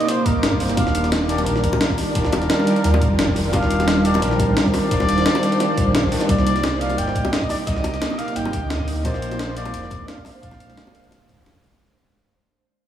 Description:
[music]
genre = liquid drum and bass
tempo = 174 BPM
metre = 4/4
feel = swing 53% on 16ths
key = Eb major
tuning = A4 = 443 Hz
[part]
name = trumpet with cup mute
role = melody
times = 0.0-11.4 s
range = Bb4 to G5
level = -26 LUFS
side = left 1 dB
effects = tape echo
[part]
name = overdriven tine electric piano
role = accompaniment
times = 0.0-11.8 s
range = C3 to G5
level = -24 LUFS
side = equal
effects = vintage 12-bit sampler grit, diffuse ambient delay
[part]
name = ethereal airy pad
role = sustained chords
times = 0.0-11.8 s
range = G3 to D6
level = -24 LUFS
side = right 1 dB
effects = ensemble chorus, built-in reverb, tremolo
[part]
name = breakbeat sampler-style drum kit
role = drums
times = 0.0-11.8 s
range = hi-hat, snare drum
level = -24 LUFS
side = equal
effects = none
[part]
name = sub bass with octave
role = bass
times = 0.3-11.8 s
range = Eb1 to Eb2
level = -24 LUFS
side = equal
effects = none
[part]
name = electronic kick drum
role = drums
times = 0.3-11.6 s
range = none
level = -24 LUFS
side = equal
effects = none
[part]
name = bongos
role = percussion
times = 0.8-11.8 s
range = none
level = -29 LUFS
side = left 3 dB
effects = none
[sound]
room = moderate huge ambient reverb, RT60 3.8 s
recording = dreamy mix soaked in reverb, small room ambience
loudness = -17 LUFS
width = side -10 dB against mid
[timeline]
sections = 0.0-11.8 A section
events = drop 0.0-11.8; fade-out 6.3-11.8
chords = 0.0 Cm9; 0.8 Ebmaj9; 6.3 Cm9; 9.0 Bb9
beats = 0.08 0.43 | 0.77 1.12 1.46 1.81 | 2.15 2.50 2.84 3.19 | 3.53 3.88 4.22 4.57 | 4.91 5.26 5.60 5.95 | 6.29 6.64 6.98 7.33 | 7.67 8.02 8.36 8.71 | 9.05 9.39 9.74 10.08 | 10.43 10.77 11.12 11.46

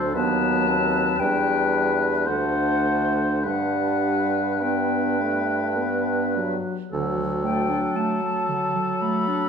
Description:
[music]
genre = classical, slow romantic movement for wind quintet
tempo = 50-58 BPM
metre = 3/4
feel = rubato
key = G major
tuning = A4 = 439 Hz
[part]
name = concert flute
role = melody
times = 0.0-9.5 s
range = C5 to B5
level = -27 LUFS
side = left 5 dB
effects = none
[part]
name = mellow oboe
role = second line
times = 0.0-9.5 s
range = A4 to C5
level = -27 LUFS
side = left 4 dB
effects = none
[part]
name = warm clarinet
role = accompaniment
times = 0.0-9.5 s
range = D3 to D4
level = -28 LUFS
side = right 3 dB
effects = none
[part]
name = warm bassoon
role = bass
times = 0.0-7.8 s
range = D2 to G2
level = -27 LUFS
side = right 3 dB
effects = none
[part]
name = clear French horn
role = accompaniment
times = 0.1-9.5 s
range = F#3 to B3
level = -28 LUFS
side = left 1 dB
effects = none
[sound]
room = wet recital hall reverb, RT60 1.6 s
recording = minimal, uncompressed stereo recording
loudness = -20 LUFS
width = side -6 dB against mid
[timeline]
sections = 0.0-6.9 A section; 6.9-9.5 B section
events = none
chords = 0.1 B7/D#; 1.2 Em7; 2.3 D7; 3.4 G; 6.9 D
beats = | 0.15 1.20 2.29 | 3.45 4.62 5.78 | 6.92 7.96 9.01

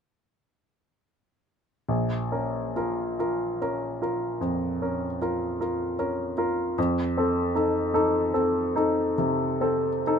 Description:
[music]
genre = classical, romantic nocturne for solo piano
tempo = 44-53 BPM (dotted quarters)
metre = 12/8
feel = rubato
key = Bb minor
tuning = A4 = 440 Hz
[part]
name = clear grand piano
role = solo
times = 1.9-10.2 s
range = Bb1 to Bb4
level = -24 LUFS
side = equal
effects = none
[sound]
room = light reverb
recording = none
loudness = -24 LUFS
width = side -7 dB against mid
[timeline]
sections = 1.9-10.2 A section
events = none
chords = 1.9 Bbm; 6.8 F7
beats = | 1.90 3.20 4.42 5.61 | 6.77 7.94 9.18

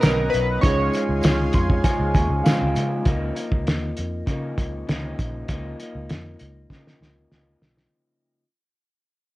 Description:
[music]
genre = indie pop, bedroom pop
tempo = 99 BPM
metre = 4/4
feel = straight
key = Db major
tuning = A4 = 440 Hz
[part]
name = chorused retro synth keys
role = melody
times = 0.0-2.4 s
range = Bb4 to Db5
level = -25 LUFS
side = right 1 dB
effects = lush chorus
[part]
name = electric guitar through a small old amp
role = accompaniment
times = 0.0-8.4 s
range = Cb3 to Eb4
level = -29 LUFS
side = left 2 dB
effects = wide subtle chorus, vibrato effect
[part]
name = tine electric piano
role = accompaniment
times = 0.0-3.1 s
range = Db4 to C6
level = -27 LUFS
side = right 2 dB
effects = cassette tape
[part]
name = lush unison pad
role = sustained chords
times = 0.0-3.0 s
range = Ab4 to Eb6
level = -33 LUFS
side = equal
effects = chorus
[part]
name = vintage muted fingered electric bass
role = bass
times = 0.0-7.9 s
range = Bb1 to Db3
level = -26 LUFS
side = equal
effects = none
[part]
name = cloth-damped thuddy drum kit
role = drums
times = 0.0-7.9 s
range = hi-hat, kick drum, snare drum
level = -22 LUFS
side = equal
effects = none
[part]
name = tambourine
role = percussion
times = 0.0-2.9 s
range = none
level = -46 LUFS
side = right 4 dB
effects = none
[sound]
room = moderate studio ambience, RT60 0.5 s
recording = worn, warbling old tape, cassette tape, warbly pitch drift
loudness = -20 LUFS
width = side -18 dB against mid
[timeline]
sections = 0.0-3.1 A section; 3.1-7.9 B section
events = tine electric piano fill 1.2-3.1; fade-out 3.1-7.9; drum fill 6.7-7.9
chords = 0.0 Cbmaj7; 0.6 Dbmaj7; 3.1 Db69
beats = 0.03 | 0.64 1.24 1.85 2.46 | 3.06 3.67 4.27 4.88 | 5.49 6.09 6.70 7.31

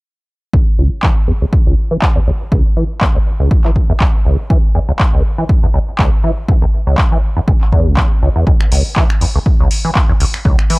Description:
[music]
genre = acid house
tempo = 121 BPM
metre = 4/4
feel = swing 55% on 16ths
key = C# minor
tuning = A4 = 443 Hz
[part]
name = liquid acid bass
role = riff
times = 0.5-10.8 s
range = C#2 to E3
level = -15 LUFS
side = equal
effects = analog chorus
[part]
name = electronic kick drum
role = drums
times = 0.5-10.6 s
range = none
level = -12 LUFS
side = equal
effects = none
[part]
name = electro analog drum machine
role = drums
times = 1.0-10.8 s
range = finger snaps, handclaps, hi-hat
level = -20 LUFS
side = equal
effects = none
[sound]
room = little or no reverb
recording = dry, gritty hardware recording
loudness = -11 LUFS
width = side -24 dB against mid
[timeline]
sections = 0.5-10.8 A section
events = filter sweep on acid bass 0.5-10.8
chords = none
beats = | 0.54 1.03 1.53 2.02 | 2.52 3.01 3.51 4.01 | 4.50 5.00 5.49 5.99 | 6.49 6.98 7.48 7.97 | 8.47 8.96 9.46 9.96 | 10.45

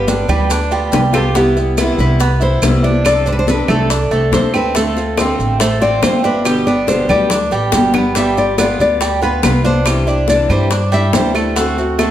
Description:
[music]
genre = latin, Cuban son and guajira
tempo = 141 BPM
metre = 4/4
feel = straight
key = C major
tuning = A4 = 440 Hz
[part]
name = nylon-string guitar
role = melody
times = 0.0-12.1 s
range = G4 to E5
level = -18 LUFS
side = left 1 dB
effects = none
[part]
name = picked acoustic archtop guitar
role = accompaniment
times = 0.0-12.1 s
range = B2 to A4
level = -20 LUFS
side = left 2 dB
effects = none
[part]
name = Cuban tres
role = arpeggios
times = 0.0-12.1 s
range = G3 to A4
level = -19 LUFS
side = right 4 dB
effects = slapback echo
[part]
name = upright bass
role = bass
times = 0.0-12.1 s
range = G1 to G2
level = -18 LUFS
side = equal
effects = none
[part]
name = bongos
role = percussion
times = 0.1-12.1 s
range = none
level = -23 LUFS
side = left 6 dB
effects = none
[part]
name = congas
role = percussion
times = 0.1-12.1 s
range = none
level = -23 LUFS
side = left 2 dB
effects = none
[part]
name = maracas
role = percussion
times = 0.1-12.1 s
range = none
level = -27 LUFS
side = right 4 dB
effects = none
[part]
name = claves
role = percussion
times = 0.3-12.1 s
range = none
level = -26 LUFS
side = right 4 dB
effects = none
[sound]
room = moderate large studio reverb, RT60 1.2 s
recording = none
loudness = -12 LUFS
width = side -11 dB against mid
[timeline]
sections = 0.0-1.4 A section; 1.4-12.1 B section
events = drum fill 1.1, 7.7-8.2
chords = 0.0 G7; 1.4 Cmaj7; 3.1 F6/C; 4.8 Dm7; 6.5 G; 8.2 G7; 9.9 Cadd9; 11.6 D7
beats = 0.08 0.50 0.93 | 1.35 1.78 2.20 2.63 | 3.05 3.48 3.90 4.33 | 4.75 5.18 5.60 6.03 | 6.45 6.88 7.30 7.73 | 8.16 8.58 9.01 9.43 | 9.86 10.29 10.71 11.14 | 11.56 11.99

